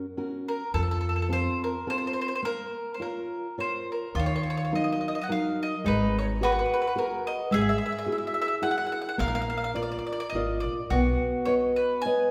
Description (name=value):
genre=italian folk, Italian serenade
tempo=106 BPM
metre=3/4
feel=swing 54% on 8ths, rubato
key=Bb minor, Eb minor from 4.2 s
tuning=A4 = 440 Hz
part: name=nylon-string guitar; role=accompaniment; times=0.0-12.3 s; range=Eb3 to D#5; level=-31 LUFS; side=equal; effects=none
part: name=bowl-back mandolin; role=melody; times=0.5-12.3 s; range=A4 to Ab5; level=-33 LUFS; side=equal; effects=none
part: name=upright bass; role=bass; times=0.7-1.5, 4.1-11.1 s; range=Ab1 to F2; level=-33 LUFS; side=equal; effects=none
part: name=mandolin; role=second line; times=4.2-12.3 s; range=Eb4 to Bb4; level=-35 LUFS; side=equal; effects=none
room=wet recital hall reverb, RT60 1.5 s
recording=recorded in a church or concert hall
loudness=-28 LUFS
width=mono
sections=0.0-4.2 A section; 4.2-12.3 B section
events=break 2.4-4.2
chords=0.0 Gb; 0.7 F; 2.4 Bbm; 4.2 Ebm; 5.9 Abm7; 7.5 Eadd9/G#; 9.2 Bb; 10.9 Badd9